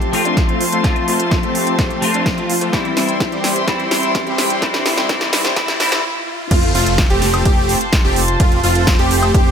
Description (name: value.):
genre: EDM, festival progressive house.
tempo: 127 BPM.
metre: 4/4.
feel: straight.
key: F major.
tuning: A4 = 440 Hz.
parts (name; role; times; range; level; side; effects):
semi-hollow electric guitar; accompaniment; 0.0-6.0 s; E3 to F4; -22 LUFS; left 3 dB; ensemble chorus, sidechain pumping, tape echo.
rich chamber string section; sustained chords; 0.0-9.5 s; E4 to C6; -22 LUFS; left 2 dB; sidechain pumping.
supersaw chords; riff; 0.0-9.5 s; G3 to G4; -21 LUFS; right 1 dB; lush chorus, sidechain pumping, low-pass filter, tape echo.
fat analog bass; bass; 0.0-9.5 s; F1 to F2; -24 LUFS; equal; none.
big-room dance drum kit; drums; 0.0-9.4 s; crash cymbal, hi-hat, ride cymbal, snare drum, woodblock; -20 LUFS; right 1 dB; none.
riser and impact; sound effects; 2.0-8.4 s; none; -29 LUFS; equal; none.
electronic kick drum; drums; 0.4-9.4 s; none; -16 LUFS; equal; none.
plucky unison lead; arpeggios; 6.5-9.5 s; F4 to G4; -20 LUFS; right 1 dB; wide subtle chorus, sidechain pumping, tape echo.
room: light reverb.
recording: high-pass filter.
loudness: -13 LUFS.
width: side -7 dB against mid.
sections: 0.0-6.5 A section; 6.5-9.5 B section.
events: build-up 0.0-6.5; drum fill 0.0-6.0; filter sweep on supersaw synth 0.0-6.5; filter sweep 0.0-6.5; stop 6.0-6.5; drop 6.5-9.5; impact 6.5-8.4.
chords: 0.0 F; 2.7 C; 6.5 F.